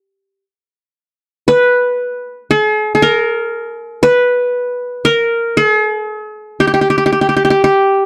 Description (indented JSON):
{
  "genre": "arabic",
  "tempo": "117 BPM (eighths)",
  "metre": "10/8",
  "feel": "straight",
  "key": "unclear",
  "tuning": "A4 = 439 Hz",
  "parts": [
    { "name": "qanun", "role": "solo", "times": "0.0-8.1 s", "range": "G4 to B4", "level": "-14 LUFS", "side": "equal", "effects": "none" }
  ],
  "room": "light reverb",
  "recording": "dry, gritty hardware recording",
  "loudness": "-14 LUFS",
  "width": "mono",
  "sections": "0.0-1.5 A section; 1.5-8.1 B section",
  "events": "none",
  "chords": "none"
}